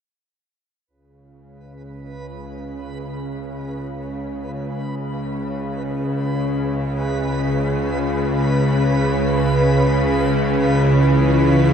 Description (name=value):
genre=dark ambient drone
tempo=free time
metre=none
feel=none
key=unclear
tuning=A4 = 440 Hz
part: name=bowed-like drone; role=drone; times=1.7-11.7 s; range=C#2 to C#3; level=-18 LUFS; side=equal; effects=built-in reverb
part: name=backwards swelling texture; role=texture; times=1.7-11.7 s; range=B4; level=-27 LUFS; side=right 2 dB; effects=built-in reverb
part: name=deep dark ambient pad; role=sustained chords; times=11.1-11.7 s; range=E4 to C#5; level=-24 LUFS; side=right 1 dB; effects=chorus, built-in reverb
room=wet huge ambient reverb, RT60 7.6 s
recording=worn, warbling old tape, cassette tape, warbly pitch drift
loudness=-17 LUFS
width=side -8 dB against mid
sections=0.9-11.7 A section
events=fade-in on synth drone 0.9-11.7; fade-in on synth texture 0.9-11.7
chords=0.9 C#m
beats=free time